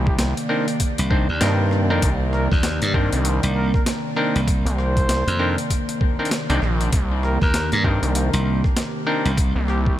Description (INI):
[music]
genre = glitch hop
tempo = 98 BPM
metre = 4/4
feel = swing 60% on 16ths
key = C minor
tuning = A4 = 440 Hz
[part]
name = warbly tape-like pad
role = sustained chords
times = 0.0-10.0 s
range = C3 to D5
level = -27 LUFS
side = equal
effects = chorus, built-in reverb, sidechain pumping
[part]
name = gritty driven synth bass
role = bass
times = 0.0-10.0 s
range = Bb1 to G2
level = -20 LUFS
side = equal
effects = tube saturation
[part]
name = breathy trumpet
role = melody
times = 0.1-9.9 s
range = G4 to C5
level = -31 LUFS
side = equal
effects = vintage 12-bit sampler grit, ping-pong delay
[part]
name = electronic kick drum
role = drums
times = 0.1-10.0 s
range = none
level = -21 LUFS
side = equal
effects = overdrive
[part]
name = boom bap sampler-style drum kit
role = drums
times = 0.2-9.8 s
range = hi-hat, rim click, snare drum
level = -29 LUFS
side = equal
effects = overdrive
[part]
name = overdriven clav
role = stabs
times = 0.5-9.3 s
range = C4 to D5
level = -26 LUFS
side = left 1 dB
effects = sidechain pumping, ping-pong delay
[part]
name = glassy slap bass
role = bass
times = 1.0-9.5 s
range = C2 to G2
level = -21 LUFS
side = equal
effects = none
[sound]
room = light reverb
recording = none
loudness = -18 LUFS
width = side -13 dB against mid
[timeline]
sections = 0.0-10.0 A section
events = none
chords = 0.0 Cm9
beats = 0.19 0.80 1.41 | 2.03 2.64 3.25 3.86 | 4.47 5.09 5.70 6.31 | 6.92 7.54 8.15 8.76 | 9.37 9.98